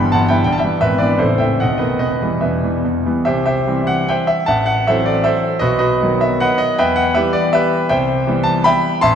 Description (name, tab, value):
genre	classical, romantic triple-time dance for piano with dotted rhythms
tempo	137-174 BPM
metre	3/4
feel	rubato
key	E minor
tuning	A4 = 441 Hz
part	bright concert grand piano	solo	0.0-9.2 s	A0 to C6	-14 LUFS	equal	none
room	wet concert hall reverb, RT60 2.3 s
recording	none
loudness	-14 LUFS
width	side -8 dB against mid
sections	0.0-3.3 A section; 3.3-9.2 B section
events	none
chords	0.0 Em/G; 0.8 E7/G#; 1.2 Am; 1.6 B7; 2.0 Em; 3.3 C; 4.5 F#m7b5/A; 5.6 B; 6.8 Em; 7.9 Cmaj7